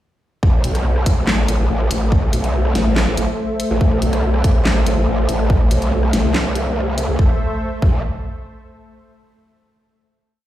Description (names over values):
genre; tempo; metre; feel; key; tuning
heavy wobble dubstep; 142 BPM; 4/4; half-time; A minor; A4 = 440 Hz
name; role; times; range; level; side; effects
supersaw pad; sustained chords; 0.4-7.4 s; A3 to E5; -23 LUFS; equal; sidechain pumping, low-pass filter
growl bass; bass; 0.4-8.0 s; A1 to C2; -18 LUFS; equal; chorus, overdrive
electronic kick drum; drums; 0.4-7.9 s; none; -15 LUFS; equal; overdrive
dubstep drum kit; drums; 0.6-7.1 s; handclaps, hi-hat, rim click, snare drum; -23 LUFS; left 1 dB; none
room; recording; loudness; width
little or no reverb; played on a big sound system in a bare room, large studio reverb; -15 LUFS; side -13 dB against mid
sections
0.4-7.2 drop; 7.2-8.9 final chord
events
drop 0.4-7.2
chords
0.4 Am; 7.2 N.C.